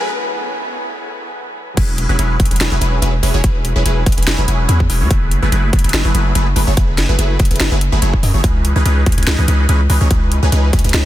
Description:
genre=future bass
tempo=144 BPM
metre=4/4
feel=swing 54% on 16ths, half-time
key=E major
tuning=A4 = 440 Hz
part: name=glassy digital keys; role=accompaniment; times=0.0-1.8 s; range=F#3 to B4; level=-35 LUFS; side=left 1 dB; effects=none
part: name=shimmering ambient pad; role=sustained chords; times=0.1-1.7 s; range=A2 to E4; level=-36 LUFS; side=left 1 dB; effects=chorus, built-in reverb, sidechain pumping
part: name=supersaw stab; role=riff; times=0.0-11.0 s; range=E3 to D#5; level=-21 LUFS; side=equal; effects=phaser, sidechain pumping, ping-pong delay
part: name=long sustained 808-style bass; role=bass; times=0.0-11.0 s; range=E1 to F#2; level=-15 LUFS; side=equal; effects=sidechain pumping, high-pass filter
part: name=electronic kick drum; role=drums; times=1.8-10.8 s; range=none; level=-15 LUFS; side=equal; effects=overdrive
part: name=trap drum kit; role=drums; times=1.8-11.0 s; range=crash cymbal, hi-hat, snare drum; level=-22 LUFS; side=left 1 dB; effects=none
room=little or no reverb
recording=dense, heavily limited modern master, high-pass filter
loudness=-12 LUFS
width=side -14 dB against mid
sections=0.0-1.8 A section; 1.8-11.1 B section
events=build-up 0.0-1.8; break 0.1-1.8; drop 1.8-11.1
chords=0.0 F#m11; 1.8 E69; 5.1 F#m11; 8.4 C#m9

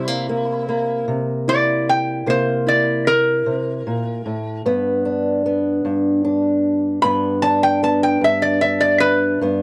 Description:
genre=acoustic country blues, solo or duo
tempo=50 BPM (dotted quarters)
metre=12/8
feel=straight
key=unclear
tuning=A4 = 440 Hz
part: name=metal-body resonator slide guitar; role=melody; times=0.0-9.4 s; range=E4 to B5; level=-20 LUFS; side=equal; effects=none
part: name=fingerpicked old ladder-braced acoustic guitar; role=accompaniment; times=0.0-9.6 s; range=G2 to G4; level=-21 LUFS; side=equal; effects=none
room=light reverb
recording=dry, close 1970s-style studio recording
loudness=-19 LUFS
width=mono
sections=0.0-9.6 A section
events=resonator guitar played with a steel bar solo 0.0-9.6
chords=0.0 C7; 4.7 G

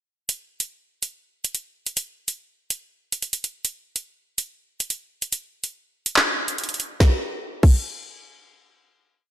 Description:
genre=hip hop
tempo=143 BPM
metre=4/4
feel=half-time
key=none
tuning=none
part: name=drill drum kit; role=drums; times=0.3-7.7 s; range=crash cymbal, handclaps, hi-hat, kick drum, snare drum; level=-20 LUFS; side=equal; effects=none
room=light reverb, digital ambience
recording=none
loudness=-23 LUFS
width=side -13 dB against mid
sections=0.3-7.0 breakdown; 7.0-9.3 final hit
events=kick muted 6.2-7.0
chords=none

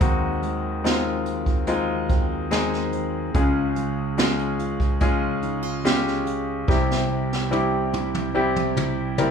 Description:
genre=pop ballad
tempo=72 BPM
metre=4/4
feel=straight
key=unclear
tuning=A4 = 440 Hz
part: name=clear concert grand piano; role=accompaniment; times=0.0-9.3 s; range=C2 to Bb4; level=-24 LUFS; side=left 2 dB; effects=none
part: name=mellow tonewheel organ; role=sustained chords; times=0.0-9.3 s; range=C2 to Bb4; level=-30 LUFS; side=right 1 dB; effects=overdrive, chorus vibrato, slow rotary speaker
part: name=fingerpicked steel-string acoustic guitar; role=arpeggios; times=0.0-9.3 s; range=C3 to Ab4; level=-32 LUFS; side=right 6 dB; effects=none
part: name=jazz brush drum kit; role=drums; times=0.0-9.3 s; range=hi-hat, kick drum, snare drum, toms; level=-24 LUFS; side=right 1 dB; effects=none
room=moderate large studio reverb, RT60 0.8 s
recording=band playing live in one room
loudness=-21 LUFS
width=side -6 dB against mid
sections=0.0-9.3 A section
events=drum fill 6.7-9.3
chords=0.0 Ab7/Eb; 3.3 Db; 6.7 C

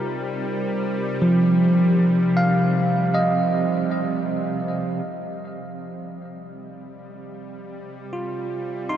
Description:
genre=ambient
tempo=78 BPM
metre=4/4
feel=straight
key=C minor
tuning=A4 = 442 Hz
part: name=bell-like tine electric piano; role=arpeggios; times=0.0-9.0 s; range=F3 to C6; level=-21 LUFS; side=equal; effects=tape echo
part: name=bowed-like drone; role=drone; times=0.0-9.0 s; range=C3 to G3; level=-27 LUFS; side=right 1 dB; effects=built-in reverb
room=wet huge ambient reverb, RT60 7.6 s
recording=dark, warm production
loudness=-19 LUFS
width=side -10 dB against mid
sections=0.0-5.1 A section; 5.1-9.0 B section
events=fade-in on tine electric piano 5.1-9.0; fade-in on synth drone 5.1-9.0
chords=0.0 Cm7; 5.1 Cm

